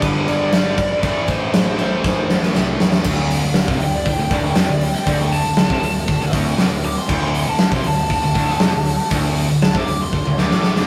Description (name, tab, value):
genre	hard rock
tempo	119 BPM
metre	4/4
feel	straight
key	D minor from 3.1 s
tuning	A4 = 440 Hz
part	lead guitar through a small cranked amp	melody	0.0-10.9 s	B4 to D6	-25 LUFS	equal	overdrive
part	crunchy overdriven guitar	riff	0.0-10.9 s	D2 to A3	-25 LUFS	equal	none
part	scooped high-gain guitar	riff	0.0-10.9 s	D2 to A3	-29 LUFS	equal	distortion
part	fuzz picked electric bass	bass	0.0-10.9 s	D1 to E2	-29 LUFS	equal	overdrive
part	big rock drum kit	drums	0.0-10.9 s	crash cymbal, hi-hat, kick drum, snare drum, toms	-20 LUFS	equal	none
room	moderate studio reverb, RT60 0.6 s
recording	rough rehearsal-room recording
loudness	-18 LUFS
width	mono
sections	0.0-3.1 A section; 3.1-10.9 B section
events	drum fill 2.0-3.1, 10.1-10.9; lead electric guitar solo 3.1-10.9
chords	0.0 G5; 1.0 Am; 3.1 Dm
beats	0.03 0.53 | 1.03 1.54 2.04 2.55 | 3.06 3.56 4.07 4.57 | 5.08 5.58 6.09 6.59 | 7.10 7.60 8.11 8.62 | 9.12 9.63 10.13 10.64